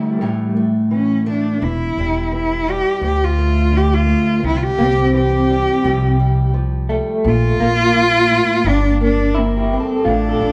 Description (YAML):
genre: acoustic folk-pop ballad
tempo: 85 BPM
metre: 4/4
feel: straight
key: unclear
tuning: A4 = 439 Hz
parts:
  - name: dark cello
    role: melody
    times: 0.0-10.5 s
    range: Bb3 to G4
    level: -20 LUFS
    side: equal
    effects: none
  - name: fingerpicked acoustic archtop guitar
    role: accompaniment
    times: 0.0-10.5 s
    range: D2 to Bb3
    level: -23 LUFS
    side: equal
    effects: none
  - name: electric guitar through a small old amp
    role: arpeggios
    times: 0.0-10.5 s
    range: E3 to A4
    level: -22 LUFS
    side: equal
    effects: tremolo
  - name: upright bass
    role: bass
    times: 1.6-10.5 s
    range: E1 to D2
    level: -21 LUFS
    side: equal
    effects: none
room: moderate large studio reverb, RT60 1.1 s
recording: band playing live in one room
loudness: -16 LUFS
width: mono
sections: 0.0-10.5 A section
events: none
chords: 0.2 A5; 1.6 Em; 3.0 D5; 4.4 Cadd9; 5.8 Fadd9/C; 7.2 Bb5; 8.6 Gmadd9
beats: 0.21 0.92 | 1.62 2.33 3.03 3.73 | 4.43 5.14 5.84 6.54 | 7.24 7.95 8.65 9.35 | 10.05